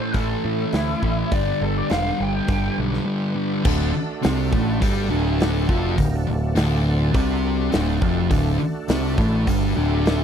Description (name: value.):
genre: blues rock power trio and southern rock.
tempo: 103 BPM.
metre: 4/4.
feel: straight.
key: D mixolydian from 3.6 s.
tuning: A4 = 442 Hz.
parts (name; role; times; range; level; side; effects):
lead guitar through a small cranked amp; melody; 0.0-2.8 s; E4 to G5; -26 LUFS; equal; wah, overdrive, slapback echo.
overdriven tonewheel organ; sustained chords; 0.0-10.2 s; A3 to B4; -33 LUFS; right 4 dB; slow rotary speaker, chorus vibrato.
thick fuzz guitar; riff; 0.0-10.2 s; D2 to C4; -23 LUFS; left 1 dB; distortion.
growling picked electric bass; bass; 0.1-10.2 s; D1 to A2; -23 LUFS; equal; overdrive.
huge arena drum kit; drums; 0.1-10.2 s; crash cymbal, hi-hat, kick drum, snare drum; -25 LUFS; equal; none.
room: little or no reverb.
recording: dry, close 1970s-style studio recording.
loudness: -19 LUFS.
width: side -8 dB against mid.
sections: 0.0-3.6 A section; 3.6-10.2 B section.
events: none.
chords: 0.0 A; 1.3 G; 3.6 D.